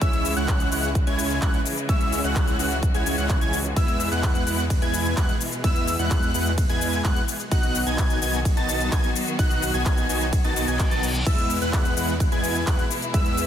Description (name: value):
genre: EDM, festival progressive house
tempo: 128 BPM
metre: 4/4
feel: straight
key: E major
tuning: A4 = 443 Hz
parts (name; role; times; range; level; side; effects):
- clear symphonic string section; sustained chords; 0.0-13.5 s; B2 to F#4; -32 LUFS; left 1 dB; sidechain pumping
- wide unison lead; arpeggios; 0.0-13.5 s; E6 to A6; -29 LUFS; equal; sidechain pumping, digital delay
- dense compressed supersaw; riff; 0.0-13.5 s; G#3 to A5; -27 LUFS; right 1 dB; sidechain pumping, digital delay
- wide detuned saw bass; bass; 0.0-13.5 s; B1 to E2; -29 LUFS; equal; chorus, sidechain pumping
- big-room dance drum kit; drums; 0.0-13.5 s; crash cymbal, handclaps, hi-hat, ride cymbal, shaker; -31 LUFS; left 2 dB; overdrive
- electronic kick drum; drums; 0.0-13.2 s; none; -23 LUFS; equal; none
- reverse cymbal; sound effects; 10.7-11.3 s; none; -33 LUFS; left 1 dB; none
room: light reverb, digital ambience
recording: dense, heavily limited modern master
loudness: -20 LUFS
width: side -10 dB against mid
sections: 0.0-13.5 A section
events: reverse cymbal 10.7-11.3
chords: 0.0 C#m; 3.8 E; 7.5 B; 11.3 E